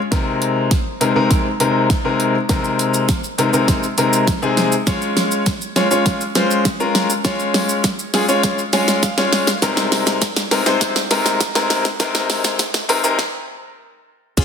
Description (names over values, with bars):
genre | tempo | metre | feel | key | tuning
dance-pop | 101 BPM | 4/4 | straight | unclear | A4 = 440 Hz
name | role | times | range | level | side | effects
clear grand piano | accompaniment | 0.1-14.4 s | C3 to Ab5 | -17 LUFS | left 2 dB | sidechain pumping
pop drum kit | drums | 0.1-14.4 s | crash cymbal, hi-hat, kick drum, shaker, snare drum | -19 LUFS | right 1 dB | none
round analog bass | bass | 14.4 s | Db2 | -22 LUFS | right 1 dB | sidechain pumping
room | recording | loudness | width
moderate lush hall reverb, RT60 1.7 s | dense, heavily limited modern master, high-pass filter | -15 LUFS | side -7 dB against mid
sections
0.0-14.4 A section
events
build-up 0.0-14.4; drum fill 0.0-13.2; filter sweep 0.0-14.4; grand piano fill 8.4-9.6; stop 13.2-14.4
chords
0.1 Abadd9/C; 4.9 Db; 9.6 Abadd9/C